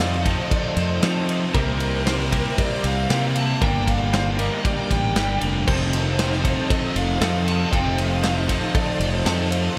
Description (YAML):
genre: rock, shoegaze and dream pop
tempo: 117 BPM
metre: 4/4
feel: straight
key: unclear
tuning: A4 = 444 Hz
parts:
  - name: lead guitar through a small cranked amp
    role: melody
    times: 0.0-9.5 s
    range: Bb4 to A5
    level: -31 LUFS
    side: equal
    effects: overdrive, analog delay
  - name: phased string machine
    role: sustained chords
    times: 0.0-9.8 s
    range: Bb4 to Eb6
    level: -36 LUFS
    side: equal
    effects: ensemble chorus, phaser
  - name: direct-recorded clean electric guitar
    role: arpeggios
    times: 0.0-9.8 s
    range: G4 to D5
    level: -35 LUFS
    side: equal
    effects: analog chorus, analog delay
  - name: biting overdriven guitar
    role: riff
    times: 0.0-9.8 s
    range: F2 to E4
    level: -30 LUFS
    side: equal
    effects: lush chorus
  - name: distorted electric guitar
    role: riff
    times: 0.0-9.8 s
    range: F2 to C4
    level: -33 LUFS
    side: equal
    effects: none
  - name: raw garage guitar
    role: riff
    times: 0.0-9.8 s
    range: G2 to A4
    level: -32 LUFS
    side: equal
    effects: overdrive, reverse reverb
  - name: fuzz fingered electric bass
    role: bass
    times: 0.0-9.7 s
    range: F1 to F3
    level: -26 LUFS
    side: equal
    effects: overdrive
  - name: big rock drum kit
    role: drums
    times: 0.0-9.6 s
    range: crash cymbal, kick drum, ride cymbal, snare drum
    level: -27 LUFS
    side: equal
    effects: none
room: moderate huge ambient reverb, RT60 4.1 s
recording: dreamy mix soaked in reverb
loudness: -21 LUFS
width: mono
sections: 0.0-5.7 A section; 5.7-9.8 A section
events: none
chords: 0.0 F7; 1.6 C9sus4; 3.6 Gm7; 5.7 F7